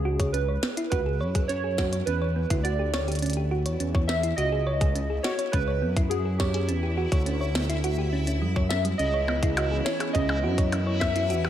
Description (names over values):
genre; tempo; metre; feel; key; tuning
IDM; 104 BPM; 4/4; straight; C# phrygian; A4 = 440 Hz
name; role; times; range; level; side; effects
warbly lo-fi synth keys; melody; 0.0-11.5 s; G4 to E5; -30 LUFS; right 2 dB; chorus, tape echo
dark detuned saw bass; bass; 0.0-11.5 s; C#2 to F#2; -27 LUFS; equal; tube saturation
backwards swelling texture; texture; 0.9-11.5 s; E4; -38 LUFS; left 1 dB; built-in reverb
thumb-piano-like synth pluck; arpeggios; 0.1-11.5 s; G3 to C#5; -31 LUFS; right 1 dB; chorus, digital delay
electronic kick drum; drums; 0.2-11.1 s; none; -26 LUFS; equal; none
glitchy drum kit; drums; 0.2-11.5 s; hi-hat, percussion blips, snare drum; -33 LUFS; equal; digital delay
phased analog pad; sustained chords; 9.2-11.5 s; E3 to F#5; -33 LUFS; right 1 dB; phaser, chorus, vintage 12-bit sampler grit
room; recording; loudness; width
light reverb; none; -23 LUFS; side -11 dB against mid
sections
0.0-11.5 A section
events
none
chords
0.0 C#m7; 2.1 E7(no3); 4.4 C#m9; 6.7 Em9; 9.0 C#m9